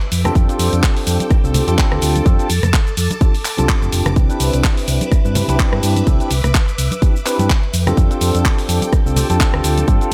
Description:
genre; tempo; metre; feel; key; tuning
filtered disco house; 126 BPM; 4/4; swing 56% on 16ths; unclear; A4 = 441 Hz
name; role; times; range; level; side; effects
phased string machine; sustained chords; 0.0-10.1 s; A4 to D6; -30 LUFS; equal; ensemble chorus, phaser, sidechain pumping
house drum kit; drums; 0.0-10.1 s; handclaps, hi-hat, rim click, shaker; -24 LUFS; equal; sidechain pumping on hats, sidechain pumping on perc, sidechain pumping on cymbals
hollow-body short-scale fingered electric bass; bass; 0.1-10.1 s; F1 to G2; -20 LUFS; equal; sidechain pumping
tambourine and congas; percussion; 0.1-10.1 s; none; -28 LUFS; equal; sidechain pumping on perc
tine electric piano; accompaniment; 0.2-10.1 s; C4 to B4; -23 LUFS; equal; phaser, vintage 12-bit sampler grit, sidechain pumping
electronic kick drum; drums; 0.4-10.0 s; none; -17 LUFS; equal; none
room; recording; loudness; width
little or no reverb; none; -16 LUFS; mono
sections
0.0-10.1 A section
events
none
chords
0.1 F69; 4.2 Cmaj9; 7.7 F69

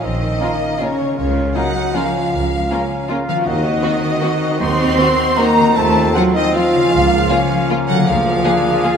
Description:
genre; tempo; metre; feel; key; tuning
classical; 157 BPM; 3/4; uneven beats, rubato; Bb minor; A4 = 439 Hz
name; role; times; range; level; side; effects
mellow hollow large flute ensemble; second line; 0.0-9.0 s; Db5 to C6; -21 LUFS; left 1 dB; none
rich studio violin section; second line; 0.0-9.0 s; Db5 to C6; -24 LUFS; left 1 dB; none
clear bassoon; accompaniment; 0.0-9.0 s; Bb3 to Gb4; -24 LUFS; right 1 dB; none
dark French horn section; sustained chords; 0.0-9.0 s; Db4 to C5; -22 LUFS; left 2 dB; none
concert harp; arpeggios; 0.0-9.0 s; Bb2 to C5; -26 LUFS; left 10 dB; none
rich studio cello section; bass; 0.0-9.0 s; Db3 to C4; -21 LUFS; right 3 dB; none
warm symphonic double bass section; bass; 0.0-8.4 s; Bb1 to Eb2; -23 LUFS; right 2 dB; none
warm studio violin section; melody; 0.4-8.9 s; F4 to Ab4; -29 LUFS; left 4 dB; none
dark studio viola section; accompaniment; 0.4-8.9 s; Eb3 to Db4; -29 LUFS; right 1 dB; none
clear trombone section; sustained chords; 0.4-9.0 s; Db3 to Db4; -28 LUFS; right 3 dB; none
dark trumpet section; stabs; 0.4-9.0 s; F4 to Bb4; -26 LUFS; right 1 dB; none
room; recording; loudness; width
wet concert hall reverb, RT60 2.6 s; lossy compression artefacts; -14 LUFS; side -7 dB against mid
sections
0.0-9.0 A section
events
none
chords
0.0 Bbm; 1.2 Bbm/Db; 3.5 Cdim/Eb; 5.8 F7/Eb; 6.9 Bbm/Db; 8.1 Bb7/D

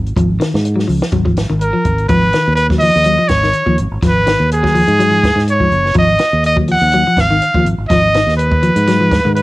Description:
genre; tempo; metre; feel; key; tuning
afrobeat; 124 BPM; 4/4; swing 54% on 16ths; G# dorian; A4 = 440 Hz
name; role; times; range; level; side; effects
fingered electric bass; bass; 0.0-9.4 s; F#1 to G#2; -16 LUFS; equal; none
compact cocktail drum kit; drums; 0.1-9.4 s; hi-hat, kick drum, snare drum; -19 LUFS; equal; cassette tape
clean electric guitar; arpeggios; 0.2-9.4 s; D#3 to F#3; -17 LUFS; left 2 dB; wide subtle chorus, cassette tape, plate reverb
bright trumpet; melody; 1.6-9.4 s; G#4 to F#5; -14 LUFS; equal; cassette tape, plate reverb
room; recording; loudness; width
moderate studio reverb, RT60 0.6 s; home recording on cassette; -11 LUFS; side -18 dB against mid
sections
0.0-2.1 A section; 2.1-9.4 B section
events
none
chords
0.0 G#sus2; 2.1 G#m

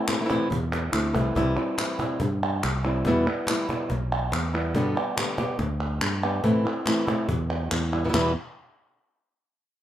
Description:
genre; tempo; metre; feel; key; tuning
flamenco; 141 BPM; 4/4; straight; E minor; A4 = 440 Hz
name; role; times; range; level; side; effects
flamenco guitar; melody; 0.0-8.3 s; E2 to G4; -25 LUFS; equal; none
cajon; percussion; 0.1-8.2 s; none; -33 LUFS; left 1 dB; none
palmas hand claps; percussion; 0.1-8.2 s; none; -30 LUFS; right 1 dB; none
fingered electric bass; bass; 0.5-8.3 s; B1 to A2; -27 LUFS; equal; none
room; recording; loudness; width
light reverb; minimal, uncompressed stereo recording; -23 LUFS; side -12 dB against mid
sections
0.0-8.1 A section; 8.1-9.8 B section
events
drum fill 0.7-1.4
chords
0.0 Am; 1.4 C; 3.1 Em; 4.8 G; 6.4 Am; 7.3 Em; 8.1 N.C.

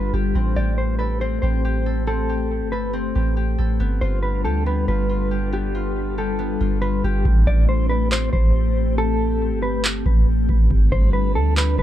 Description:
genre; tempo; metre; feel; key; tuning
hip hop, atmospheric cloud-rap; 139 BPM; 4/4; half-time; A minor; A4 = 440 Hz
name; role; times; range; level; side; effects
mellow electric guitar; melody; 0.0-11.8 s; G4 to D5; -27 LUFS; left 1 dB; tremolo, ping-pong delay
glassy FM pad; sustained chords; 0.0-11.8 s; G3 to B4; -26 LUFS; left 4 dB; ensemble chorus, built-in reverb, sidechain pumping
concert harp; arpeggios; 0.0-9.5 s; B3 to A4; -33 LUFS; equal; ping-pong delay
soft 808-style bass; bass; 0.0-11.8 s; G1 to D2; -21 LUFS; equal; none
booming analog drum machine; drums; 7.3-11.8 s; handclaps, kick drum; -18 LUFS; equal; none
room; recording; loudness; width
light reverb; dark, warm production; -18 LUFS; side -12 dB against mid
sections
0.0-7.3 A section; 7.3-11.8 B section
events
hi-hats muted 7.3-11.8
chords
0.3 Am7; 3.8 G7; 7.3 Am7; 10.7 G7

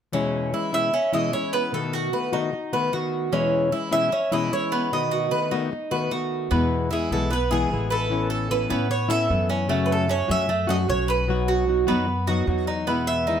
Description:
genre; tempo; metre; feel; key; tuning
latin; 151 BPM; 4/4; straight; E major; A4 = 438 Hz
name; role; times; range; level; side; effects
flamenco guitar; accompaniment; 0.1-13.4 s; E2 to F#4; -26 LUFS; left 5 dB; none
Cuban tres; arpeggios; 0.1-13.4 s; A3 to B4; -26 LUFS; right 2 dB; none
Cuban tres; melody; 0.7-13.4 s; F#4 to E5; -26 LUFS; right 3 dB; none
upright bass; bass; 6.5-13.4 s; A1 to A2; -27 LUFS; equal; none
room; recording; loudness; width
light reverb; none; -21 LUFS; side -8 dB against mid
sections
0.1-6.5 A section; 6.5-13.4 B section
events
none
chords
0.1 E6; 1.7 B7; 3.3 E6; 4.9 B7; 6.5 E; 8.1 Aadd9; 9.7 F#m; 11.3 B; 12.9 Emaj7

